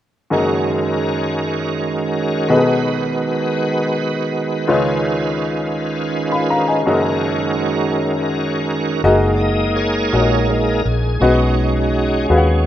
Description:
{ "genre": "gospel", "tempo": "55 BPM (dotted quarters)", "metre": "6/8", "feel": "straight", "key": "F# major", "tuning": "A4 = 444 Hz", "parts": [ { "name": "bright upright piano", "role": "accompaniment", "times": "0.3-12.7 s", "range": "F#1 to B5", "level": "-19 LUFS", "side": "left 2 dB", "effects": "none" }, { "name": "bright tonewheel organ", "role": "sustained chords", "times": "0.3-12.7 s", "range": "D#3 to D#5", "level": "-18 LUFS", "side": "right 2 dB", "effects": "overdrive, chorus vibrato, slow rotary speaker" }, { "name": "vintage muted fingered electric bass", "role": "bass", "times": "9.0-12.7 s", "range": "F#1 to D#2", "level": "-18 LUFS", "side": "equal", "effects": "none" } ], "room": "moderate lush hall reverb, RT60 2.6 s", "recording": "rough home demo mix", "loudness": "-15 LUFS", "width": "side -12 dB against mid", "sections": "0.3-9.0 A section; 9.0-12.7 B section", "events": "tonewheel organ solo 9.0-12.7", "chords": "0.3 F#69; 2.5 B6; 4.7 C#9; 6.9 F#69; 11.2 B6", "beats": "| 0.31 1.41 | 2.50 3.60 | 4.69 5.78 | 6.87 7.96 | 9.05 10.14 | 11.22 12.31" }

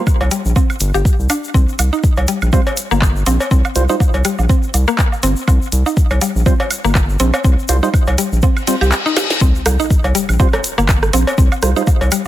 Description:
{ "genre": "minimal techno", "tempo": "122 BPM", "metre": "4/4", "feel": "swing 56% on 16ths", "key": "C minor", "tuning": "A4 = 440 Hz", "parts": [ { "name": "percussive organ stab", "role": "stabs", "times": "0.0-11.8 s", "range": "G3 to C5", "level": "-23 LUFS", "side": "right 4 dB", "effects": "chorus, digital delay" }, { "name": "electronic kick drum", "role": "drums", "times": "0.1-12.0 s", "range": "none", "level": "-13 LUFS", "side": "equal", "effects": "overdrive" }, { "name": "electronic woodblock, cowbell and rim click", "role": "percussion", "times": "0.1-12.2 s", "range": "none", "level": "-23 LUFS", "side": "right 1 dB", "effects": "digital delay" }, { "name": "tube shaker", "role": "percussion", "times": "0.1-12.3 s", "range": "none", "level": "-27 LUFS", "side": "left 3 dB", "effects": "none" }, { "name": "round analog bass", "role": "bass", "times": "0.2-12.1 s", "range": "G1 to C2", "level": "-15 LUFS", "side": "equal", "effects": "sidechain pumping" }, { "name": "mallet-like synth pluck", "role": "riff", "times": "0.3-12.1 s", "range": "G3 to G4", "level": "-20 LUFS", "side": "left 1 dB", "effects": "chorus, sidechain pumping, digital delay" }, { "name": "minimal click drum kit", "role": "drums", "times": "0.3-12.2 s", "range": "handclaps, hi-hat, snare drum", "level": "-21 LUFS", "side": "right 1 dB", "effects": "overdrive" }, { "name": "reverse cymbal and sub drop", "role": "sound effects", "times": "8.6-11.4 s", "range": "none", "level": "-24 LUFS", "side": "left 3 dB", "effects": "none" } ], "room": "digital ambience", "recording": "none", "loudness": "-12 LUFS", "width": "side -14 dB against mid", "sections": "0.0-9.4 A section; 9.4-12.3 B section", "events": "reverse cymbal 8.6-9.4; kick drops out 8.9-9.4; drum fill 9.2; drop 9.4-12.3; impact 9.4-11.4", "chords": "0.0 C5; 9.4 Csus4", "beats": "0.07 0.56 1.05 | 1.54 2.04 2.53 3.02 | 3.51 4.00 4.50 4.99 | 5.48 5.97 6.46 6.95 | 7.45 7.94 8.43 8.92 | 9.41 9.90 10.40 10.89 | 11.38 11.87" }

